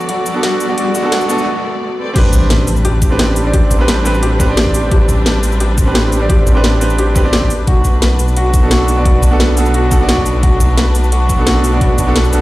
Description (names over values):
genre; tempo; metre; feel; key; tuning
liquid drum and bass; 174 BPM; 4/4; straight; A dorian; A4 = 441 Hz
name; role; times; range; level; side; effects
clear concert grand piano; accompaniment; 0.0-12.4 s; B3 to D5; -18 LUFS; right 2 dB; dub echo
rich studio string section; sustained chords; 0.0-12.4 s; G3 to D5; -23 LUFS; left 1 dB; none
felt-muted upright piano; arpeggios; 0.0-12.4 s; F#4 to B4; -20 LUFS; left 2 dB; vintage 12-bit sampler grit, dub echo
drum and bass drum kit; drums; 0.0-12.4 s; crash cymbal, hi-hat, shaker, snare drum; -18 LUFS; equal; high-pass filter on hats, high-pass filter on perc, high-pass filter on snare, high-pass filter on cymbals, high-pass filter on room
riser and impact; sound effects; 0.0-3.5 s; none; -22 LUFS; equal; none
swelling detuned saw bass; bass; 2.2-12.4 s; A1 to B1; -14 LUFS; equal; none
electronic kick drum; drums; 2.2-12.1 s; none; -13 LUFS; equal; none
room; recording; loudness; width
light reverb; played on a big sound system in a bare room, stone room reverb; -10 LUFS; side -17 dB against mid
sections
0.0-2.2 A section; 2.2-12.4 B section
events
build-up 0.0-2.2; riser 0.0-1.5; filter sweep on felt piano 0.0-2.2; break 1.5-2.2; drop 2.2-12.4; impact 2.2-3.5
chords
0.0 Bm7; 2.0 Am11; 7.5 Bm7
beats
0.09 0.43 | 0.78 1.12 1.47 1.81 | 2.16 2.50 2.85 3.19 | 3.54 3.88 4.23 4.57 | 4.92 5.26 5.61 5.95 | 6.29 6.64 6.99 7.33 | 7.67 8.02 8.36 8.71 | 9.05 9.40 9.74 10.09 | 10.43 10.78 11.12 11.47 | 11.81 12.16